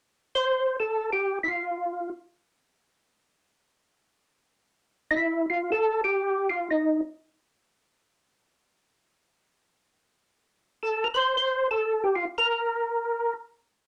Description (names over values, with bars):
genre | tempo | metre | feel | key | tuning
jazz | free time | none | none | F major | A4 = 439 Hz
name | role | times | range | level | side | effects
percussive tonewheel organ | solo | 0.4-2.1, 5.1-7.0, 10.8-13.3 s | Eb4 to C5 | -26 LUFS | equal | chorus vibrato, slow rotary speaker
room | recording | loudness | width
moderate studio ambience, RT60 0.5 s | none | -27 LUFS | mono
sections
0.1-5.5 A section; 5.5-13.9 B section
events
none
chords
none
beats
free time